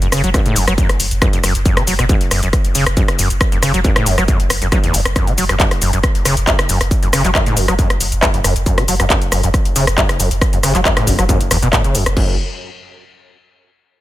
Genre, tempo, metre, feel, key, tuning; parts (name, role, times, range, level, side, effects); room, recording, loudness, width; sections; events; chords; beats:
driving peak-time techno; 137 BPM; 4/4; straight; F# minor; A4 = 439 Hz
overdriven acid bass; riff; 0.0-12.4 s; F#1 to F#3; -19 LUFS; equal; distortion, wide subtle chorus, sidechain pumping, ping-pong delay
warm sub bass; bass; 0.0-12.4 s; F#1; -20 LUFS; equal; sidechain pumping, low-pass filter
techno drum kit; drums; 0.0-12.3 s; crash cymbal, handclaps, hi-hat, rim click, shaker; -17 LUFS; left 1 dB; sidechain pumping on hats, sidechain pumping on cymbals, sidechain pumping on perc
electronic kick drum; drums; 0.3-12.3 s; -16 LUFS; equal; distortion
little or no reverb; -12 LUFS; side -15 dB against mid
0.0-12.2 A section; 12.2-13.9 B section
filter sweep on acid bass 0.0-12.2
0.34 0.78 1.22 | 1.66 2.09 2.53 2.97 | 3.41 3.85 4.28 4.72 | 5.16 5.60 6.04 6.47 | 6.91 7.35 7.79 8.22 | 8.66 9.10 9.54 9.98 | 10.41 10.85 11.29 11.73 | 12.17